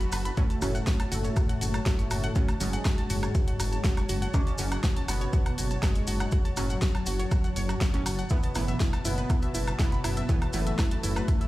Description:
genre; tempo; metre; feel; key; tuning
melodic techno; 121 BPM; 4/4; straight; F# minor; A4 = 443 Hz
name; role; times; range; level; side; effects
resonant sweep polysynth; melody; 0.0-11.5 s; F#2 to C#4; -34 LUFS; left 1 dB; chorus, phaser, sidechain pumping, tape echo
lush unison pad; sustained chords; 0.0-11.5 s; F#3 to A5; -40 LUFS; equal; chorus, sidechain pumping
warbly dusty pluck; arpeggios; 0.0-11.5 s; E4 to A6; -37 LUFS; right 1 dB; chorus, sidechain pumping, digital delay
dark detuned saw bass; bass; 0.0-11.2 s; F#1; -30 LUFS; equal; sidechain pumping
deep house drum kit; drums; 0.0-11.5 s; hi-hat, snare drum, woodblock; -35 LUFS; equal; studio reverb
maracas; percussion; 0.0-11.5 s; none; -41 LUFS; left 1 dB; none
synth brass stab; stabs; 0.4-11.5 s; A2 to C#4; -38 LUFS; right 2 dB; none
electronic kick drum; drums; 0.4-11.4 s; none; -25 LUFS; equal; studio reverb
dark detuned synth bell; second line; 4.3-5.0 s; C#4; -45 LUFS; left 1 dB; none
room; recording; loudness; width
little or no reverb; played on a big sound system in a bare room, stone room reverb; -25 LUFS; side -17 dB against mid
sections
0.0-11.5 A section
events
none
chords
0.4 F#m; 8.3 Asus2/F#

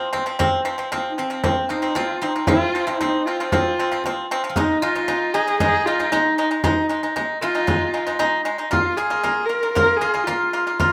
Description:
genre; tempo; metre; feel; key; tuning
mongolian traditional, Mongolian folk; 115 BPM; 4/4; straight; F yu mode; A4 = 441 Hz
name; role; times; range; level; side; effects
guzheng; second line; 0.0-10.9 s; C4 to Bb4; -33 LUFS; equal; none
pipa; arpeggios; 0.0-10.9 s; F3 to F4; -24 LUFS; equal; plate reverb
frame drum; percussion; 0.1-10.9 s; none; -27 LUFS; equal; none
rich horsehead fiddle; melody; 1.1-10.9 s; C4 to Bb4; -25 LUFS; equal; none
room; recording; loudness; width
wet studio reverb, RT60 0.6 s; rough home demo mix; -21 LUFS; mono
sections
0.4-10.9 A section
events
none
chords
0.4 F5; 4.6 Ab5; 8.7 Bb5

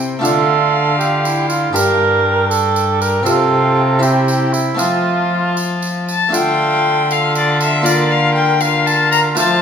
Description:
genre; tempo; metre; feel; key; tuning
classical, renaissance-style consort dance; 79 BPM (dotted quarters); 6/8; straight; unclear; A4 = 441 Hz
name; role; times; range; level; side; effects
rich violin; melody; 0.0-9.6 s; D5 to Bb5; -19 LUFS; left 5 dB; none
harpsichord; accompaniment; 0.0-9.6 s; G2 to C5; -22 LUFS; left 2 dB; none
rich viola; accompaniment; 0.0-9.6 s; C4 to F4; -22 LUFS; left 3 dB; none
rich cello; bass; 0.0-9.6 s; G2 to F3; -19 LUFS; equal; none
mellow cor anglais; second line; 0.2-9.6 s; E4 to C5; -17 LUFS; right 5 dB; none
tambourine; percussion; 0.2-9.6 s; none; -26 LUFS; right 4 dB; none
room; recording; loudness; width
wet recital hall reverb, RT60 1.8 s; minimal, uncompressed stereo recording; -12 LUFS; side -7 dB against mid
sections
0.0-6.3 A section; 6.3-9.6 A section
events
none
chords
0.2 Dm; 1.8 Gm; 3.3 Csus4; 4.0 C; 4.8 F; 6.3 Dm; 7.9 Bb/D

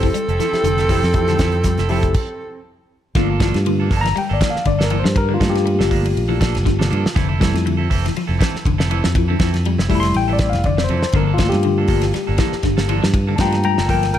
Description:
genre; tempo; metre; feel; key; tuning
afrobeat; 120 BPM; 4/4; swing 54% on 16ths; G dorian; A4 = 441 Hz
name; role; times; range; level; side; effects
growling alto saxophone; melody; 0.0-2.6 s; A4; -21 LUFS; right 2 dB; none
breathy tenor saxophone; second line; 0.0-2.6 s; C4; -30 LUFS; right 5 dB; none
tine electric piano; accompaniment; 0.0-14.2 s; G3 to C6; -21 LUFS; left 4 dB; medium stereo tremolo
clean electric guitar; arpeggios; 0.0-14.1 s; C3 to G3; -25 LUFS; left 6 dB; phaser
semi-hollow electric guitar; stabs; 0.0-14.1 s; E3 to A4; -27 LUFS; right 9 dB; spring reverb
fingered electric bass; bass; 0.0-14.2 s; F1 to G2; -19 LUFS; equal; none
damped 70s drum kit; drums; 0.0-14.2 s; crash cymbal, hi-hat, kick drum, ride cymbal, snare drum; -21 LUFS; equal; none
room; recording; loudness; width
light reverb; none; -15 LUFS; side -11 dB against mid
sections
0.0-3.2 A section; 3.2-14.2 B section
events
stop 2.2-3.2; tine electric piano solo 3.2-14.2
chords
0.0 Fmaj7; 3.2 Gm9; 7.1 Fmaj7; 11.1 Gm9

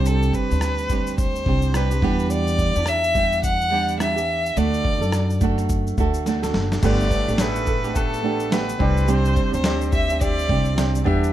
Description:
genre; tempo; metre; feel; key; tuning
acoustic pop; 106 BPM; 4/4; swing 60% on 16ths; G major; A4 = 445 Hz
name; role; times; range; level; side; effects
warm violin; melody; 0.0-11.0 s; A4 to F#5; -24 LUFS; left 1 dB; slapback echo
flamenco guitar; accompaniment; 0.0-11.3 s; G2 to A4; -25 LUFS; right 5 dB; none
upright bass; bass; 0.0-11.3 s; F#1 to F#2; -23 LUFS; equal; none
dusty soul sampler-style drum kit; drums; 0.1-11.3 s; crash cymbal, kick drum, rim click, shaker, snare drum; -25 LUFS; equal; none
bright concert grand piano; accompaniment; 6.8-11.3 s; A3 to E5; -29 LUFS; left 2 dB; none
flamenco guitar; arpeggios; 6.8-11.3 s; G3 to A4; -31 LUFS; right 4 dB; none
room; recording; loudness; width
little or no reverb; close, detailed microphones; -18 LUFS; side -12 dB against mid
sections
0.0-6.8 A section; 6.8-11.3 B section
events
drum fill 6.3-6.8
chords
0.0 Csus2; 2.0 Em7; 4.6 D; 6.8 Gadd9; 8.8 Csus2

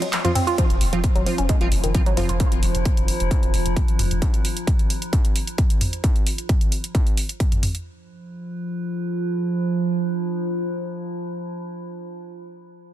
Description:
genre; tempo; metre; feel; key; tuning
driving peak-time techno; 132 BPM; 4/4; straight; unclear; A4 = 440 Hz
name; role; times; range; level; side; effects
woody wave-folded pluck; riff; 0.0-2.3 s; Eb3 to F4; -26 LUFS; equal; chorus, sidechain pumping, digital delay
techno drum kit; drums; 0.0-7.8 s; handclaps, hi-hat, ride cymbal, toms; -27 LUFS; right 1 dB; overdrive
wavetable chord stab; stabs; 0.2-2.3 s; F3 to F4; -29 LUFS; right 2 dB; cassette tape, sidechain pumping, ping-pong delay
metallic inharmonic drone; drone; 1.8-12.3 s; F3; -27 LUFS; right 2 dB; chorus, built-in reverb, phaser, sidechain pumping
electronic kick drum; drums; 0.6-7.5 s; none; -20 LUFS; equal; distortion, overdrive
saturated sub bass; bass; 0.7-4.2 s; F1; -24 LUFS; equal; overdrive, sidechain pumping, low-pass filter
room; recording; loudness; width
digital ambience; dense, heavily limited modern master; -19 LUFS; side -12 dB against mid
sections
0.6-7.9 A section; 7.9-11.5 B section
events
break 0.0-0.6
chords
0.0 F5; 7.9 N.C.

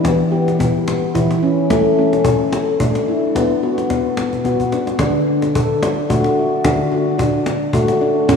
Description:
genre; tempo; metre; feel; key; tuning
world meditative, meditative tuned percussion; 109 BPM; 3/4; swing 54% on 16ths; unclear; A4 = 440 Hz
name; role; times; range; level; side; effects
handpan; arpeggios; 0.0-8.4 s; A2 to A4; -15 LUFS; left 1 dB; tape echo, shimmer reverb
cajon; percussion; 0.0-8.4 s; none; -22 LUFS; left 2 dB; none
room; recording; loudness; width
wet lush hall reverb, RT60 3.0 s; dreamy mix soaked in reverb, small room reverb; -14 LUFS; side -6 dB against mid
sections
0.0-5.0 A section; 5.0-8.4 B section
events
drum fill 4.3-5.0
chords
0.0 Em; 1.7 A; 3.4 Bm; 5.0 D

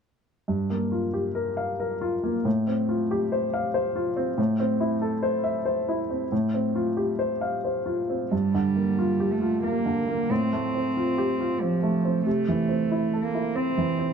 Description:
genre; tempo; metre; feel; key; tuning
neoclassical piano and strings; 92 BPM; 3/4; rubato; unclear; A4 = 440 Hz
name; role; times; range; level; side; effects
clear baby grand piano; accompaniment; 0.5-14.1 s; G2 to F5; -24 LUFS; left 1 dB; none
warm cello; second line; 8.3-14.1 s; F3 to C4; -26 LUFS; right 4 dB; none
room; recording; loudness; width
light reverb; dark, warm production; -23 LUFS; side -6 dB against mid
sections
0.5-8.3 A section; 8.3-14.1 B section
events
none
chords
0.5 Gm7; 2.5 Fadd9/A; 4.4 Am; 6.3 Fadd9/A; 8.3 Gm7; 10.3 Fadd9/A; 12.3 Am

